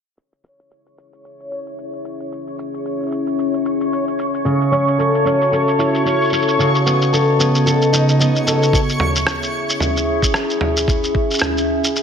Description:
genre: folktronica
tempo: 112 BPM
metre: 4/4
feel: swing 56% on 16ths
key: C# minor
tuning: A4 = 441 Hz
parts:
  - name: warbly tape-like pad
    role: sustained chords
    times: 1.7-12.0 s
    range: C#3 to E5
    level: -20 LUFS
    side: left 1 dB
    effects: chorus, built-in reverb
  - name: lo-fi sampler-style drum kit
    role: drums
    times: 0.2-12.0 s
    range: rim click, shaker, toms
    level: -21 LUFS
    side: right 1 dB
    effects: none
  - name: backwards swelling texture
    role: texture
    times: 1.4-8.7 s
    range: C#5 to C#6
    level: -24 LUFS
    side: equal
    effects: built-in reverb
  - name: fingerpicked steel-string acoustic guitar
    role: arpeggios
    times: 4.4-8.8 s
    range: C#3 to A4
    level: -16 LUFS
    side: equal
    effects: digital delay
  - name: electronic kick drum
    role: drums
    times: 8.7-11.3 s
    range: none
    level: -19 LUFS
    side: right 1 dB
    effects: none
room: moderate echo chamber reverb, RT60 2.0 s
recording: low-pass filter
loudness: -15 LUFS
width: side -7 dB against mid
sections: 0.2-8.7 A section; 8.7-12.0 B section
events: filter sweep on ambient pad 0.2-8.7; filter sweep 0.2-8.7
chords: 0.2 C#m; 4.4 F#m7/C#; 6.6 B7/C#; 8.7 C#m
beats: | 0.16 0.70 1.23 1.77 | 2.31 2.84 3.38 3.91 | 4.45 4.98 5.52 6.05 | 6.59 7.13 7.66 8.20 | 8.73 9.27 9.80 10.34 | 10.88 11.41 11.95

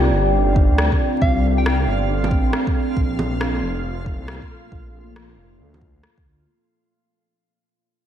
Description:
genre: future garage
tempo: 137 BPM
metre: 4/4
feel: swing 66% on 16ths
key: unclear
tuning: A4 = 438 Hz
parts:
  - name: muted felt-like synth keys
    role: accompaniment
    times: 0.0-3.0 s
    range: C4 to G4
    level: -27 LUFS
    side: equal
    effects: chorus, phaser, sidechain pumping, ping-pong delay
  - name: deep dark ambient pad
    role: sustained chords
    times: 0.0-6.5 s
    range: Bb3 to G5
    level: -23 LUFS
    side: equal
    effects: chorus, built-in reverb, sidechain pumping
  - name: swelling detuned saw bass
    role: bass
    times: 0.0-6.5 s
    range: F1 to D2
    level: -21 LUFS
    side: equal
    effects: none
  - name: backwards swelling texture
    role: texture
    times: 0.3-6.5 s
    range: F4 to F5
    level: -35 LUFS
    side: right 2 dB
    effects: built-in reverb, lush chorus
  - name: electronic kick drum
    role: drums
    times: 0.6-6.2 s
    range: none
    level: -20 LUFS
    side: equal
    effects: none
  - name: electronic rim click and bongos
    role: drums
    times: 0.8-6.1 s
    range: none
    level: -28 LUFS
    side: equal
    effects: none
  - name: soft struck synth lead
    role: melody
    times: 1.2-1.9 s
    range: F5 to G5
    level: -29 LUFS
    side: equal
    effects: chorus, ping-pong delay
room: moderate lush hall reverb, RT60 2.1 s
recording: dreamy mix soaked in reverb, vinyl crackle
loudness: -17 LUFS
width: side -10 dB against mid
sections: 0.0-6.5 A section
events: fade-out 0.0-6.5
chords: 0.0 Cm69; 3.0 Bbmaj7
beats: 0.34 0.78 | 1.21 1.65 2.09 2.53 | 2.96 3.40 3.84 4.28 | 4.72 5.16 5.59 6.03

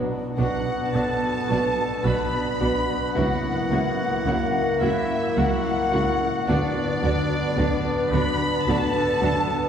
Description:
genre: classical, slow romantic movement for symphony orchestra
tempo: 54 BPM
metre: 3/4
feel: rubato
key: B minor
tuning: A4 = 440 Hz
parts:
  - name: mellow clarinet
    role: second line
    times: 0.0-9.7 s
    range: D4 to E4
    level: -33 LUFS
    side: left 1 dB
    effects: none
  - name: warm bassoon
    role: accompaniment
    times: 0.0-9.7 s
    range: A#3 to B3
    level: -29 LUFS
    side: right 1 dB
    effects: none
  - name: dark French horn section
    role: sustained chords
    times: 0.0-9.6 s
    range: A#3 to E4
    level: -31 LUFS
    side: left 2 dB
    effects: none
  - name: concert harp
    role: arpeggios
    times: 0.0-9.7 s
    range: B2 to B4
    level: -30 LUFS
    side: left 3 dB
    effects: none
  - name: rich studio violin section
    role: melody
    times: 0.4-9.7 s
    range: D5 to B5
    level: -30 LUFS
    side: left 2 dB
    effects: none
  - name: mellow hollow flute section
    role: second line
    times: 0.4-9.7 s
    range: D5 to B5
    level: -32 LUFS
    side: left 1 dB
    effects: none
  - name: mellow oboe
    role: second line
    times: 0.4-9.7 s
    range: D4 to B4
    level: -32 LUFS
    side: right 1 dB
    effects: none
  - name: warm studio violin section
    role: second line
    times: 0.4-9.3 s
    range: D4 to F#4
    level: -34 LUFS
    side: equal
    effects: none
  - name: warm studio viola section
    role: accompaniment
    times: 0.4-9.3 s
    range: F#3 to B3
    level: -32 LUFS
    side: right 2 dB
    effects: none
  - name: warm studio double bass section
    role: bass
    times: 0.4-9.3 s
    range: B1 to D2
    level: -29 LUFS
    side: right 2 dB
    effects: none
  - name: warm symphonic cello section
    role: bass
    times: 0.4-9.3 s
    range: B2 to D3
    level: -31 LUFS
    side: right 3 dB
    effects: none
room: wet church reverb, RT60 3.1 s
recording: recorded in a church or concert hall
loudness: -20 LUFS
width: side -8 dB against mid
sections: 0.0-9.7 A section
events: none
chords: 0.0 Bm; 3.2 F#7/C#; 6.5 Bm/D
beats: 0.95 2.06 | 3.17 4.27 5.39 | 6.49 7.58 8.68

